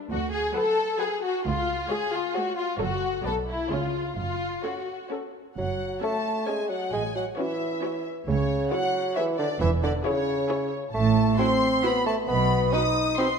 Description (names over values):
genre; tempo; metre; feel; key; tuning
cinematic, playful, whimsical film cue; 134 BPM; 3/4; straight; F# minor; A4 = 442 Hz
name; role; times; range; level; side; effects
dark studio violin section; second line; 0.1-13.4 s; E4 to D#6; -28 LUFS; left 2 dB; none
rich studio double bass section; bass; 0.1-12.7 s; E1 to D2; -30 LUFS; right 5 dB; none
warm studio cello section; bass; 0.1-12.7 s; C#2 to C#3; -30 LUFS; right 4 dB; none
rich studio viola section; accompaniment; 0.5-13.3 s; F#3 to B4; -35 LUFS; left 1 dB; none
rich studio violin section; melody; 0.6-13.3 s; B4 to F#5; -39 LUFS; left 5 dB; none
mellow bassoon; accompaniment; 5.6-13.3 s; C#3 to D#4; -26 LUFS; equal; none
room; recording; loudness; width
wet scoring stage reverb, RT60 1.8 s; none; -23 LUFS; side -6 dB against mid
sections
0.0-5.6 A section; 5.6-13.4 B section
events
none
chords
0.1 Bm/D; 1.5 C#; 2.8 F#m; 3.3 Bm; 3.7 C#; 4.2 F#m; 6.9 F#m/A; 8.3 C#m; 9.6 C#m/E; 10.9 F#dim/A (rootless); 12.3 B